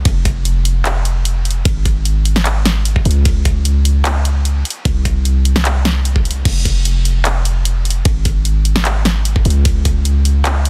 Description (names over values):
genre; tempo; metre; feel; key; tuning
future bass; 150 BPM; 4/4; half-time; F minor; A4 = 441 Hz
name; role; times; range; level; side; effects
warm 808-style bass; bass; 0.0-10.7 s; F1 to Db2; -17 LUFS; equal; sidechain pumping
dubstep drum kit; drums; 0.1-10.7 s; crash cymbal, handclaps, hi-hat, ride cymbal, snare drum; -22 LUFS; equal; studio reverb
electronic kick drum; drums; 0.1-9.9 s; none; -18 LUFS; equal; studio reverb
room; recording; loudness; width
little or no reverb; dense, heavily limited modern master; -15 LUFS; mono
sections
0.0-10.7 A section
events
none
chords
none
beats
| 0.06 0.46 0.85 1.25 | 1.66 2.06 2.46 2.85 | 3.25 3.65 4.05 4.46 | 4.86 5.25 5.66 6.05 | 6.46 6.86 7.25 7.66 | 8.05 8.46 8.86 9.26 | 9.65 10.05 10.46